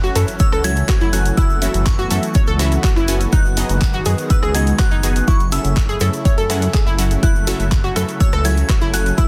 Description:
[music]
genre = progressive house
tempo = 123 BPM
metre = 4/4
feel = straight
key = unclear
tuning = A4 = 441 Hz
[part]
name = glassy synth bell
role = melody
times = 0.0-9.3 s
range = C#6 to G#6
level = -29 LUFS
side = equal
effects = chorus, phaser, sidechain pumping, tape echo
[part]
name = lush unison pad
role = sustained chords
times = 0.0-9.3 s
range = C#3 to F#4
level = -29 LUFS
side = equal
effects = chorus, phaser, sidechain pumping
[part]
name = analog pluck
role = arpeggios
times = 0.0-9.3 s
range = D#4 to C#5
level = -27 LUFS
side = equal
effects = chorus, sidechain pumping, tape echo
[part]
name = unison pluck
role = stabs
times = 0.0-9.2 s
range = F#3 to G#5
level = -27 LUFS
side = equal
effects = phaser, sidechain pumping, tape echo
[part]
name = dark detuned saw bass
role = bass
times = 0.0-9.3 s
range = F#1 to F#2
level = -21 LUFS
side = equal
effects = sidechain pumping
[part]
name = tube shaker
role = percussion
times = 0.0-9.3 s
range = none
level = -36 LUFS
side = equal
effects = none
[part]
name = impact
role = sound effects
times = 0.3-1.4 s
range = none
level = -41 LUFS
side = equal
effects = none
[part]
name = house drum kit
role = drums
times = 0.2-9.3 s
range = handclaps, hi-hat, rim click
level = -29 LUFS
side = equal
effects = soft clipping on snare, sidechain pumping on hats, sidechain pumping on cymbals
[part]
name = electronic kick drum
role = drums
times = 0.4-9.3 s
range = none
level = -18 LUFS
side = equal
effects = none
[sound]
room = little or no reverb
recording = dense, heavily limited modern master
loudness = -16 LUFS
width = mono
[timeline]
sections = 0.0-9.3 A section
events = impact 0.0-1.4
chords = 0.0 F#m7; 3.3 G#m7/F#; 5.3 Amaj7/F#

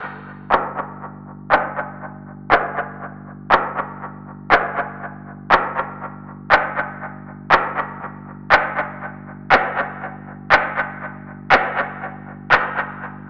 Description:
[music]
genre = afro house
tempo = 120 BPM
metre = 4/4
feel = swing 54% on 16ths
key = unclear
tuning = A4 = 440 Hz
[part]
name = warm sub bass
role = bass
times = 0.0-13.3 s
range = G1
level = -34 LUFS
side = equal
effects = none
[part]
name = electronic handclaps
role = drums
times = 0.5-12.6 s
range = none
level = -15 LUFS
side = equal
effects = low-pass filter on perc, low-pass filter on snare, low-pass filter on room, analog delay
[sound]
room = wet spring reverb, RT60 1.5 s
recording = echo-heavy mix, AM radio sound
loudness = -16 LUFS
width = side -28 dB against mid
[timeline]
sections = 0.0-13.3 A section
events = none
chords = none

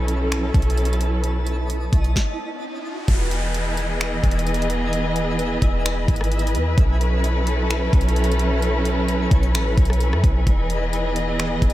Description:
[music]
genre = hip hop, atmospheric cloud-rap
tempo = 130 BPM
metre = 4/4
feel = half-time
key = E major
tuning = A4 = 435 Hz
[part]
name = dark symphonic string section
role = sustained chords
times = 0.0-11.7 s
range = E3 to D#5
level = -24 LUFS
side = equal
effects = sidechain pumping
[part]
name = clean 808-style bass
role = bass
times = 0.0-11.7 s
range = E1 to F#2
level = -21 LUFS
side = equal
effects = none
[part]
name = twinkling granular texture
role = texture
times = 0.0-11.7 s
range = E4 to A5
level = -31 LUFS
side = equal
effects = built-in reverb
[part]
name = trap drum kit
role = drums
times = 0.1-11.7 s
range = finger snaps, hi-hat, kick drum, rim click, snare drum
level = -22 LUFS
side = equal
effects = none
[part]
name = riser and downlifter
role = sound effects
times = 2.3-6.8 s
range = none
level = -32 LUFS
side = equal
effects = none
[sound]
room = little or no reverb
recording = none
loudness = -18 LUFS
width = side -15 dB against mid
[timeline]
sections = 0.0-3.1 A section; 3.1-11.7 B section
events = stop 2.2-3.1; riser 2.3-3.1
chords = 0.0 B9sus4; 3.1 Emaj7; 6.8 B9sus4; 10.5 Emaj7

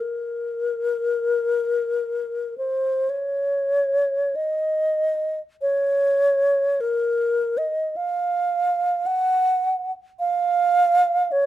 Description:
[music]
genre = classical, free, expressive piece for unaccompanied alto flute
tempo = 30-55 BPM (dotted quarters)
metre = 6/8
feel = rubato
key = Bb minor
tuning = A4 = 441 Hz
[part]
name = mellow wooden-headed alto flute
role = solo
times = 0.0-11.5 s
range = Bb4 to Gb5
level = -20 LUFS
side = equal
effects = none
[sound]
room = light reverb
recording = close, detailed microphones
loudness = -20 LUFS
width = side -13 dB against mid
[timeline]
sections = 0.0-3.1 A section; 3.1-11.5 B section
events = none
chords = none

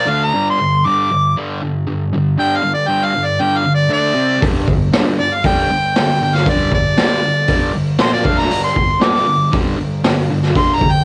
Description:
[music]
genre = garage rock duo or trio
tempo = 118 BPM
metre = 4/4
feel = straight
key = G minor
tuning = A4 = 439 Hz
[part]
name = bright harmonica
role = melody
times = 0.0-11.0 s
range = C5 to D6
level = -18 LUFS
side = equal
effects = overdrive
[part]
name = fuzz guitar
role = riff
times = 0.0-11.0 s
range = G2 to D4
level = -20 LUFS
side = equal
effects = distortion, cassette tape
[part]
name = raw garage drum kit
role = drums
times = 4.4-10.9 s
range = hi-hat, kick drum, snare drum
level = -19 LUFS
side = equal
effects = cassette tape
[sound]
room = little or no reverb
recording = home recording on cassette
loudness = -16 LUFS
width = mono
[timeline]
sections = 0.0-11.0 A section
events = none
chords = 0.1 D5; 0.3 G5; 3.9 D5; 4.2 C5; 4.4 G5; 8.0 Bb5; 8.2 D5; 8.5 G5

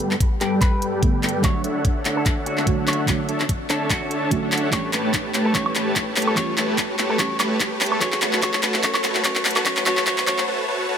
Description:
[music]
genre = future bass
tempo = 146 BPM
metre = 4/4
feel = swing 54% on 16ths, half-time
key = D major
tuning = A4 = 438 Hz
[part]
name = soft round pluck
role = accompaniment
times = 0.0-10.5 s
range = D3 to C#5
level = -29 LUFS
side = right 3 dB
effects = chorus, sidechain pumping
[part]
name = dense compressed supersaw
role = riff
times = 0.0-11.0 s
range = G3 to A5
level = -23 LUFS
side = equal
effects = cassette tape, sidechain pumping, low-pass filter
[part]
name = warm 808-style bass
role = bass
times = 0.0-10.5 s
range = none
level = barely audible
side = none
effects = none
[part]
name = trap drum kit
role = drums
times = 0.0-10.5 s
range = handclaps, hi-hat, woodblock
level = -23 LUFS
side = equal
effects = none
[part]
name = riser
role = sound effects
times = 1.9-11.0 s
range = none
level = -33 LUFS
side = equal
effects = none
[part]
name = electronic kick drum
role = drums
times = 0.2-10.2 s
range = none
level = -23 LUFS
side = equal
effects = none
[part]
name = electric guitar with an envelope filter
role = melody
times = 0.4-10.4 s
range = F#4 to C#5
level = -29 LUFS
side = equal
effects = sidechain pumping, low-pass filter, ping-pong delay
[sound]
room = moderate huge ambient reverb, RT60 6.3 s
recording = high-pass filter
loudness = -18 LUFS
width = side -8 dB against mid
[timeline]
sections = 0.0-11.0 A section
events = build-up 0.0-11.0; drum fill 0.0-10.5; filter sweep on supersaw synth 0.0-11.0; filter sweep 0.0-11.0; riser 1.9-11.0; break 10.5-11.0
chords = 0.0 Gadd9; 1.4 Dmaj7; 4.7 A7; 8.0 B5

